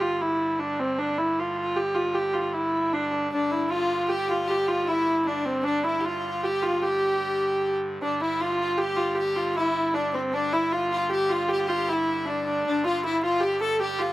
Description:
medieval dance; 154 BPM; 3/4; straight; A4 = 439 Hz
rich hurdy-gurdy; melody; 0.0-14.1 s; C4 to A4; -24 LUFS; right 1 dB
pipe organ, trumpet; drone; 0.0-14.1 s; G2 to D3; -36 LUFS; equal
clear fiddle; second line; 3.3-14.1 s; C4 to A4; -29 LUFS; left 4 dB; slapback echo
light reverb; recorded outdoors, with no room sound; -23 LUFS; side -16 dB against mid
0.0-8.0 A section; 8.0-14.1 A section

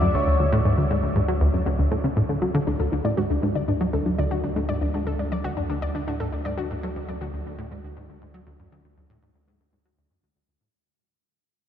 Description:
ambient, sequencer-driven space music; 119 BPM; 4/4; straight; D lydian; A4 = 440 Hz
pulse-width lead; melody; 0.0-0.5 s; C#5 to D5; -30 LUFS; left 1 dB; chorus, cassette tape, ping-pong delay
plucky analog bass; riff; 0.0-10.7 s; D2 to F#3; -24 LUFS; equal; wide subtle chorus, ping-pong delay
warm sub bass; bass; 0.0-10.7 s; D2; -29 LUFS; equal
warbly dusty pluck; arpeggios; 2.7-6.7 s; D4 to D5; -29 LUFS; left 2 dB; chorus, auto-pan, ping-pong delay
wet huge ambient reverb, RT60 7.8 s; dreamy mix soaked in reverb; -22 LUFS; side -9 dB against mid
0.0-2.7 A section; 2.7-10.7 B section
fade-out on analog synth bass 2.7-10.7; fade-out on sub bass 2.7-10.7; fade-out 2.7-10.7
0.0 Dmaj7; 2.7 D

